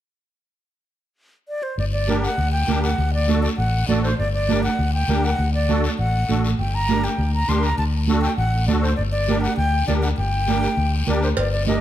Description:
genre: latin, cumbia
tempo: 200 BPM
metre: 4/4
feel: straight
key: G harmonic minor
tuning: A4 = 442 Hz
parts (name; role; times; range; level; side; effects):
- breathy concert flute; melody; 1.5-11.8 s; C5 to C6; -25 LUFS; equal; none
- fingered electric bass; bass; 1.8-11.8 s; G1 to D2; -21 LUFS; left 1 dB; none
- congas; percussion; 1.8-11.8 s; none; -26 LUFS; right 8 dB; none
- guiro; percussion; 1.8-11.8 s; none; -32 LUFS; left 5 dB; none
- musette accordion; accompaniment; 2.1-11.8 s; D4 to Bb4; -28 LUFS; left 1 dB; none
- cowbell; percussion; 11.4-11.5 s; none; -26 LUFS; right 1 dB; none
room: moderate large studio reverb, RT60 1.4 s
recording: dark, warm production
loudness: -18 LUFS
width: side -12 dB against mid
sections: 0.6-1.8 A section; 1.8-11.4 B section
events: none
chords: 0.6 N.C.; 1.8 Gm; 3.0 D; 4.2 Gm; 5.4 D; 6.6 Gm; 7.8 D; 9.0 Gm

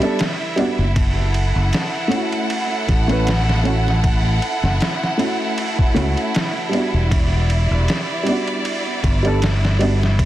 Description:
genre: trip hop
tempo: 78 BPM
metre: 4/4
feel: swing 55% on 16ths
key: E dorian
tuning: A4 = 440 Hz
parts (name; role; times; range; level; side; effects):
- dark upright piano; accompaniment; 0.0-10.0 s; G3 to B4; -22 LUFS; equal; tremolo, vintage 12-bit sampler grit, tape echo
- bright symphonic violin section; sustained chords; 0.0-10.3 s; E4 to F#5; -24 LUFS; right 1 dB; vintage 12-bit sampler grit
- trip hop sampler-style drum kit; drums; 0.0-10.3 s; hi-hat, kick drum, ride cymbal, snare drum; -22 LUFS; equal; none
- modern bright fingered electric bass; bass; 0.8-10.3 s; E1 to C#2; -18 LUFS; equal; tube saturation
room: digital ambience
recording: dense, heavily limited modern master, vinyl crackle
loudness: -16 LUFS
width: side -14 dB against mid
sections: 0.0-10.3 A section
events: none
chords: 0.0 Em7

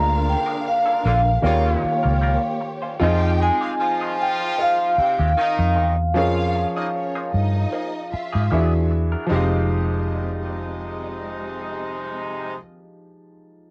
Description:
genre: lush 1970s-style soul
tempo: 76 BPM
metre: 4/4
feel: swing 54% on 16ths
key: F minor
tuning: A4 = 440 Hz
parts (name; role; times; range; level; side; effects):
- vibraphone with medium mallets; melody; 0.0-8.5 s; F5 to Bb5; -24 LUFS; equal; none
- warm studio string section; second line; 0.0-12.5 s; Ab3 to G5; -34 LUFS; equal; cassette tape
- clear concert grand piano; accompaniment; 0.0-13.7 s; D3 to F5; -29 LUFS; equal; cassette tape
- direct-recorded clean electric guitar; riff; 0.0-12.8 s; Eb3 to C5; -35 LUFS; equal; wah, harmonic tremolo, cassette tape
- vintage muted fingered electric bass; bass; 0.0-12.5 s; F1 to Ab2; -23 LUFS; equal; none
- warm horn section; stabs; 1.0-12.5 s; C3 to Ab4; -31 LUFS; equal; cassette tape
room: light reverb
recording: home recording on cassette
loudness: -21 LUFS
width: mono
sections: 0.0-3.0 A section; 3.0-9.3 B section; 9.3-12.5 C section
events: none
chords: 0.0 Bb7/D; 1.4 Eb9; 3.0 Fm9; 6.2 Db69/F; 8.5 E9; 9.3 Fm9

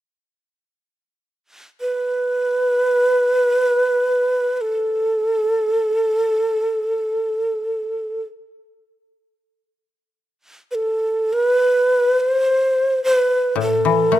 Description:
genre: japanese traditional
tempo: free time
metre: none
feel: none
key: A hirajoshi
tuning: A4 = 442 Hz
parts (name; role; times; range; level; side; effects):
- breathy mellow shakuhachi; melody; 1.8-14.2 s; A4 to C5; -17 LUFS; right 1 dB; none
- koto; accompaniment; 13.6-14.2 s; A2 to A3; -18 LUFS; left 8 dB; none
room: light reverb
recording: close, detailed microphones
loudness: -17 LUFS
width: side -14 dB against mid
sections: 0.3-11.3 A section; 11.3-14.2 B section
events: none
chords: none

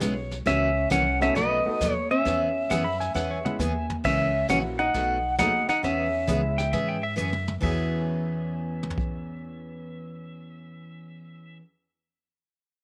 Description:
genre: country, western swing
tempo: 134 BPM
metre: 4/4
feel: swing 67% on 8ths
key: E major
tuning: A4 = 440 Hz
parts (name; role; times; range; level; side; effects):
- clean lap steel guitar; second line; 0.0-11.6 s; C#5 to B5; -37 LUFS; equal; none
- picked steel-string acoustic guitar; accompaniment; 0.0-11.6 s; B2 to G#4; -34 LUFS; equal; none
- upright bass; bass; 0.0-11.6 s; A#1 to G#2; -34 LUFS; equal; none
- vintage brush drum kit; drums; 0.0-9.1 s; brushed snare drum, crash cymbal, hi-hat, kick drum, snare drum, toms; -37 LUFS; equal; none
- pedal steel guitar; melody; 0.5-7.1 s; D#5 to F#5; -28 LUFS; equal; none
- archtop guitar, miked and amplified; second line; 0.5-7.1 s; B3 to D#4; -32 LUFS; equal; none
- warm upright piano; accompaniment; 1.2-11.6 s; E2 to A4; -38 LUFS; equal; none
room: moderate spring reverb, RT60 1.4 s, small room ambience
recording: none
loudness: -25 LUFS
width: mono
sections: 0.0-4.0 A section; 4.0-7.6 B section; 7.6-11.2 C section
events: drum fill 3.1-4.0, 7.2-7.6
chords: 0.5 F#7/C#; 1.4 B7; 2.3 E6; 4.0 F#7/C#; 4.9 B7; 5.8 E6

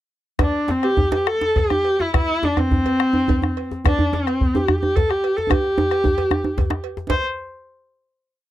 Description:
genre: west african traditional, West African drum ensemble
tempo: 136-162 BPM (dotted quarters)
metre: 12/8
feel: straight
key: C major pentatonic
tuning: A4 = 440 Hz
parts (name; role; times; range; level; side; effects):
- warm viola; melody; 0.4-7.2 s; C4 to C5; -20 LUFS; equal; none
- bombo; percussion; 0.4-7.2 s; none; -21 LUFS; equal; none
- cowbell; percussion; 0.4-7.2 s; none; -32 LUFS; right 25 dB; none
- djembe; percussion; 0.4-7.2 s; none; -27 LUFS; left 2 dB; none
- djembe; percussion; 0.4-7.2 s; none; -24 LUFS; right 2 dB; none
room: little or no reverb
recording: dry, close 1970s-style studio recording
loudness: -17 LUFS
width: side -14 dB against mid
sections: 0.4-7.1 A section; 7.1-8.5 final note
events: speeding up 0.4-8.5; drum fill 5.5-7.1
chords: none

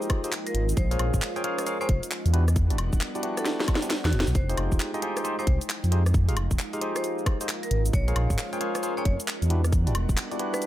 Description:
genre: UK garage, two-step garage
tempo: 134 BPM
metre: 4/4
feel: swing 64% on 16ths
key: unclear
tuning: A4 = 444 Hz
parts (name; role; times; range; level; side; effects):
- airy breathy pad; sustained chords; 0.0-10.7 s; G3 to G5; -38 LUFS; right 1 dB; chorus, sidechain pumping
- barky tine electric piano; stabs; 0.0-10.7 s; D4 to G5; -31 LUFS; equal; phaser, digital delay
- garage drum kit; drums; 0.0-10.7 s; cabasa, handclaps, hi-hat, rim click, snare drum, woodblock; -31 LUFS; equal; none
- deep dark ambient pad; texture; 0.0-10.7 s; E4 to G5; -38 LUFS; right 1 dB; chorus, built-in reverb, sidechain pumping
- electronic kick drum; drums; 0.1-10.2 s; none; -24 LUFS; equal; none
- vibraphone with hard mallets; melody; 0.5-10.7 s; F#4 to Db5; -37 LUFS; left 1 dB; digital delay
- dark detuned saw bass; bass; 0.5-10.2 s; D1 to F2; -24 LUFS; equal; none
room: digital ambience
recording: none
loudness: -23 LUFS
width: side -14 dB against mid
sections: 0.0-10.7 A section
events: drum fill 3.5-4.4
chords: 0.0 Fm9; 0.8 Bbm9; 2.3 Em9; 4.4 Fm9; 7.9 Bbm9; 9.5 Em9

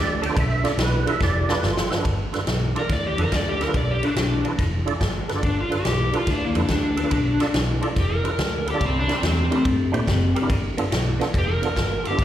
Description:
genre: electric blues shuffle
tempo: 142 BPM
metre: 4/4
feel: swing 67% on 8ths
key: G mixolydian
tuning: A4 = 438 Hz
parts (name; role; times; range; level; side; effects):
- tonewheel organ; accompaniment; 0.0-12.2 s; B3 to G5; -27 LUFS; right 4 dB; slow rotary speaker, overdrive, chorus vibrato, slapback echo
- electric guitar through a small old amp; riff; 0.0-12.2 s; G2 to A3; -29 LUFS; left 3 dB; phaser, slapback echo
- vintage muted fingered electric bass; bass; 0.0-12.2 s; F1 to Bb2; -25 LUFS; equal; none
- swinging big-band drum kit; drums; 0.2-12.2 s; kick drum, ride cymbal, snare drum; -25 LUFS; equal; none
- overdriven slide guitar; melody; 2.8-12.2 s; Bb3 to D5; -24 LUFS; left 1 dB; slapback echo
room: little or no reverb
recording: live gig heard through the venue's PA, recital hall reverb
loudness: -20 LUFS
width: side -11 dB against mid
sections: 0.0-2.1 A section; 2.1-12.2 A section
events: drum fill 1.2-2.1; electric slide guitar solo 2.1-12.2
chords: 0.0 G7; 8.8 C7; 10.5 G7

